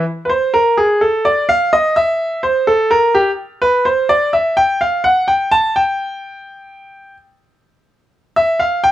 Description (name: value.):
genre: latin.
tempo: 126 BPM.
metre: 4/4.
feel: straight.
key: unclear.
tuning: A4 = 440 Hz.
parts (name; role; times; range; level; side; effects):
bright concert grand piano; solo; 0.0-8.9 s; G4 to A5; -13 LUFS; equal; none.
room: light reverb.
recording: close, detailed microphones.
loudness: -12 LUFS.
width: side -13 dB against mid.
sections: 0.1-8.9 A section.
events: grand piano solo 0.1-8.9.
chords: none.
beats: | 0.06 0.54 1.01 1.49 | 1.96 2.44 2.91 3.39 | 3.86 4.34 4.81 5.29 | 5.76 6.23 6.71 7.18 | 7.66 8.13 8.61.